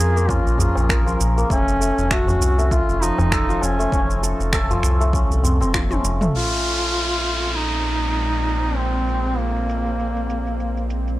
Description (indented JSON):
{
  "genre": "organic downtempo",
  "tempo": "99 BPM",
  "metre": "4/4",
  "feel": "swing 56% on 16ths",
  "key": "unclear",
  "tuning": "A4 = 438 Hz",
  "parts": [
    { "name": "mellow duduk", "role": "melody", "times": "0.0-10.9 s", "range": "Bb3 to Ab4", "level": "-24 LUFS", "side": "equal", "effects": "tape echo" },
    { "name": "santur", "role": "arpeggios", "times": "0.0-10.7 s", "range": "F3 to Bb4", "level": "-25 LUFS", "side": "left 1 dB", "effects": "analog delay" },
    { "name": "round analog bass", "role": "bass", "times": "0.0-11.2 s", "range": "F1 to F2", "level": "-22 LUFS", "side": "equal", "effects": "tube saturation, sidechain pumping" },
    { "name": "deep house drum kit", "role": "drums", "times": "0.0-11.2 s", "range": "finger snaps, shaker, toms", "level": "-26 LUFS", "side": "right 1 dB", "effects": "overdrive, low-pass filter on perc, low-pass filter on snare, low-pass filter on toms" },
    { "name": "electronic kick drum", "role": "drums", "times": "0.3-5.9 s", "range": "none", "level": "-24 LUFS", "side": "equal", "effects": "overdrive" },
    { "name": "tabla", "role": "percussion", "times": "0.6-6.2 s", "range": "none", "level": "-26 LUFS", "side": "equal", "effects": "none" },
    { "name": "bowed-like drone", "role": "sustained chords", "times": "7.0-11.2 s", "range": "Bb2 to C4", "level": "-31 LUFS", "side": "equal", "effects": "built-in reverb, sidechain pumping" },
    { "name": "downlifter", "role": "sound effects", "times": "6.3-11.2 s", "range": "none", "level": "-27 LUFS", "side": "equal", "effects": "none" }
  ],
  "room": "digital ambience",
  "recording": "dry, gritty hardware recording",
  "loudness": "-18 LUFS",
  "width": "side -16 dB against mid",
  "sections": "0.0-6.3 A section; 6.3-11.2 B section",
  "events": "drum fill 5.7-6.3; filter sweep on synth drone 6.3-11.2",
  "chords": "0.0 Bbm7; 1.5 F(b13); 6.3 Abadd9/Bb"
}